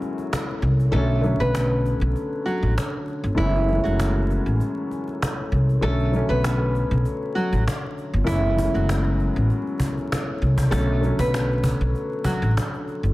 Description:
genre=hip hop, boom-bap hip-hop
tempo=98 BPM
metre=4/4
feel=swing 55% on 16ths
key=unclear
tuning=A4 = 440 Hz
part: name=nylon-string guitar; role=melody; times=0.0-12.5 s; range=E3 to B4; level=-27 LUFS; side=right 1 dB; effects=high-pass filter, low-pass filter, digital delay
part: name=dark upright piano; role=accompaniment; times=0.0-13.1 s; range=F#2 to C#4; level=-27 LUFS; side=left 2 dB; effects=cassette tape, high-pass filter, low-pass filter
part: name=cajon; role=drums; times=0.0-13.1 s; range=none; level=-28 LUFS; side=equal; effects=none
part: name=upright bass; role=bass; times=0.6-13.1 s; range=F#1 to B#1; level=-21 LUFS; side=equal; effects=none
room=light reverb, small room ambience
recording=dense, heavily limited modern master, vinyl crackle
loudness=-20 LUFS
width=side -18 dB against mid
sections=0.0-13.1 A section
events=break 0.0-8.3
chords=0.0 F#m11; 0.9 Bm9; 3.4 F#m11; 5.8 Bm9; 8.3 F#m11; 10.7 Bm9

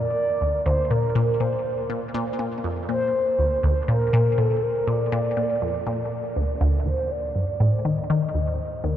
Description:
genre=ambient, sequencer-driven space music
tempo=121 BPM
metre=4/4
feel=straight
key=unclear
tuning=A4 = 439 Hz
part: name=mellow horn-like synth lead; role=melody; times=0.0-9.0 s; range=A4 to Eb5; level=-25 LUFS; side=equal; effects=chorus, tape echo
part: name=resonant blip pluck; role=riff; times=0.0-9.0 s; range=D2 to Eb3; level=-23 LUFS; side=equal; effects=phaser, tape echo
room=wet huge ambient reverb, RT60 8.1 s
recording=dark, warm production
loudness=-21 LUFS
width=side -11 dB against mid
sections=0.0-9.0 A section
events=none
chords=0.0 Bb; 6.9 N.C.

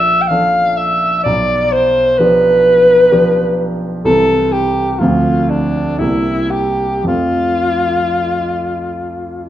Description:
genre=classical, romantic duo for alto saxophone and grand piano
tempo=53-65 BPM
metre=3/4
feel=rubato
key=F major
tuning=A4 = 440 Hz
part: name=clear alto saxophone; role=melody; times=0.0-9.5 s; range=D4 to G5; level=-12 LUFS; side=equal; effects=none
part: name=warm concert grand piano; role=accompaniment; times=0.0-9.5 s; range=Bb1 to A4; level=-18 LUFS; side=right 1 dB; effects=none
room=wet recital hall reverb, RT60 1.4 s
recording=none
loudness=-11 LUFS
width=side -12 dB against mid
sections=0.0-9.5 A section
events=none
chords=0.0 Bbmaj7; 1.3 G7/B; 4.1 C; 5.0 Dm7; 6.0 C7; 7.1 F

